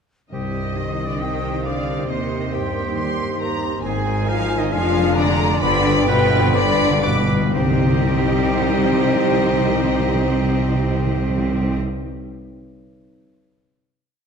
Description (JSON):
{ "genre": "classical, dramatic, fast romantic movement for symphony orchestra", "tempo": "118-138 BPM", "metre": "4/4", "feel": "straight", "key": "C minor", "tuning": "A4 = 441 Hz", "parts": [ { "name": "warm symphonic violin section", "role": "melody", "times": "0.3-11.8 s", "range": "Eb5 to D6", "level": "-28 LUFS", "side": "left 1 dB", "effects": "none" }, { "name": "bright oboe", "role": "second line", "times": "0.3-11.8 s", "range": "G4 to F5", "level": "-30 LUFS", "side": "right 2 dB", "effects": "none" }, { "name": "bright silver concert flute", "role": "second line", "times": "0.3-11.8 s", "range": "G5 to Eb6", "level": "-31 LUFS", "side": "left 1 dB", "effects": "none" }, { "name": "rich chamber violin section", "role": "second line", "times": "0.3-11.8 s", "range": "G4 to F5", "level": "-30 LUFS", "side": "left 4 dB", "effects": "none" }, { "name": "warm clarinet", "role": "second line", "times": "0.3-11.8 s", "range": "Eb4 to G4", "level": "-30 LUFS", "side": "left 2 dB", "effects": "none" }, { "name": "clear symphonic viola section", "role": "accompaniment", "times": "0.3-11.8 s", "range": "Eb3 to G4", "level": "-29 LUFS", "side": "right 2 dB", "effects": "none" }, { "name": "mellow bassoon", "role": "accompaniment", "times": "0.3-11.8 s", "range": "B3 to D4", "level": "-29 LUFS", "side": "left 3 dB", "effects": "none" }, { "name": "dark French horn section", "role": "sustained chords", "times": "0.3-11.8 s", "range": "G3 to F4", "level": "-27 LUFS", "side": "left 3 dB", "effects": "none" }, { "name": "concert harp", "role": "arpeggios", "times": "0.3-12.0 s", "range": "F2 to C6", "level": "-29 LUFS", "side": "left 7 dB", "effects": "none" }, { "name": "mellow tuba", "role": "bass", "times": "0.3-11.8 s", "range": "F1 to Eb2", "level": "-27 LUFS", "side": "right 4 dB", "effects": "none" }, { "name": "rich symphonic cello section", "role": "bass", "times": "0.3-11.8 s", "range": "G2 to C4", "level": "-26 LUFS", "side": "equal", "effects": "none" }, { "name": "rich symphonic double bass section", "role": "bass", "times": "0.3-11.8 s", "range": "F1 to Eb2", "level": "-26 LUFS", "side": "right 3 dB", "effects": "none" }, { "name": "timpani", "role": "percussion", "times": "0.3-0.9, 5.6-11.8 s", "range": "G2 to C3", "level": "-24 LUFS", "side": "equal", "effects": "none" } ], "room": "wet recital hall reverb, RT60 1.6 s", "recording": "dark, warm production", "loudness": "-17 LUFS", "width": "side -6 dB against mid", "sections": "0.3-7.5 A section; 7.5-11.5 final chord", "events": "slowing down 3.0-7.5; timpani fill 5.6-7.5", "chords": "0.3 Cm; 2.1 Cm/Eb; 3.8 Ab; 4.7 Ddim/F; 5.6 G7; 7.5 Cm", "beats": "| 0.32 0.77 1.21 1.65 | 2.09 2.54 2.98 3.41 | 3.85 4.28 4.72 5.17 | 5.62 6.08 6.55 7.03 | 7.53 8.03 8.52 9.02 | 9.51 10.00 10.49 10.99" }